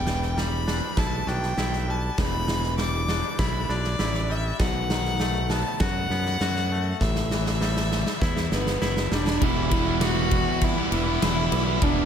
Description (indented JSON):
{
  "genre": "post-rock",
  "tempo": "100 BPM",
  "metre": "4/4",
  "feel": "straight",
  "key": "E minor",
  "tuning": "A4 = 440 Hz",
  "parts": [
    { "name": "clear violin", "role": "melody", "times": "0.0-12.1 s", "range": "B3 to D6", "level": "-29 LUFS", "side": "equal", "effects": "slapback echo" },
    { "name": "twangy electric guitar", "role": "arpeggios", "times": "0.0-9.4 s", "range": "E2 to F#4", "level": "-33 LUFS", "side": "left 4 dB", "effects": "slapback echo" },
    { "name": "modern bright fingered electric bass", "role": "bass", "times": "0.0-12.1 s", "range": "E1 to F#2", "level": "-27 LUFS", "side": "equal", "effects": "none" },
    { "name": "big rock drum kit", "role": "drums", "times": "0.1-12.0 s", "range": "kick drum, ride cymbal, snare drum", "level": "-27 LUFS", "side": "equal", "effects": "none" },
    { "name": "distorted electric guitar", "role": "riff", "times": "9.4-12.1 s", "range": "E3 to E4", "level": "-25 LUFS", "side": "right 1 dB", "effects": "distortion" }
  ],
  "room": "light reverb",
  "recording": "none",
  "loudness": "-22 LUFS",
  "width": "side -8 dB against mid",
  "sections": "0.0-9.4 A section; 9.4-12.1 B section",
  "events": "drum fill 7.0-9.4",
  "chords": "0.0 Em7; 4.6 B7; 7.0 A5; 9.4 Em"
}